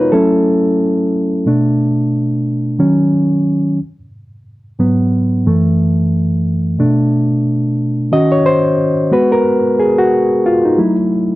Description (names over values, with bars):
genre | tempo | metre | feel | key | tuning
R&B | 90 BPM | 4/4 | swing 57% on 16ths | unclear | A4 = 441 Hz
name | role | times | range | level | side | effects
reed electric piano | solo | 0.0-11.4 s | Gb2 to Eb5 | -12 LUFS | equal | none
room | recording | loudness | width
moderate studio reverb, RT60 0.6 s | dark, warm production | -12 LUFS | side -17 dB against mid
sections
0.0-8.1 A section; 8.1-11.4 B section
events
reed electric piano solo 0.0-8.1, 8.1-11.4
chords
0.1 Gbm7; 1.4 Bm7; 2.8 Ebm7; 3.8 Abm7; 5.4 Gbm7; 6.8 Bm7; 8.1 Ebm7; 9.1 Abm7; 10.8 Gbm7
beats
| 0.11 0.78 1.45 2.11 | 2.78 3.45 4.11 4.78 | 5.45 6.11 6.78 7.45 | 8.11 8.78 9.45 10.11 | 10.78